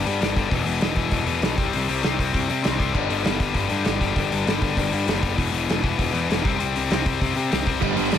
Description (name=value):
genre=punk rock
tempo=197 BPM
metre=4/4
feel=straight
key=unclear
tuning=A4 = 443 Hz
part: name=tight distorted guitar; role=riff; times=0.0-8.2 s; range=E2 to C4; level=-23 LUFS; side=left 7 dB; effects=distortion
part: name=fuzz picked electric bass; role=bass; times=0.0-8.2 s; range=E1 to C3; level=-27 LUFS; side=right 1 dB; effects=overdrive
part: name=loose indie drum kit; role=drums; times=0.1-8.2 s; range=crash cymbal, hi-hat, kick drum, snare drum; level=-25 LUFS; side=right 1 dB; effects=none
part: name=biting overdriven guitar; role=riff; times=7.8-8.2 s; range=G2 to G3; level=-23 LUFS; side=right 19 dB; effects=none
room=little or no reverb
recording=none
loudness=-20 LUFS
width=side -9 dB against mid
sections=0.0-8.2 A section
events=none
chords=0.0 G5; 0.5 E5; 1.6 C5; 2.9 G5; 5.4 E5; 6.4 C5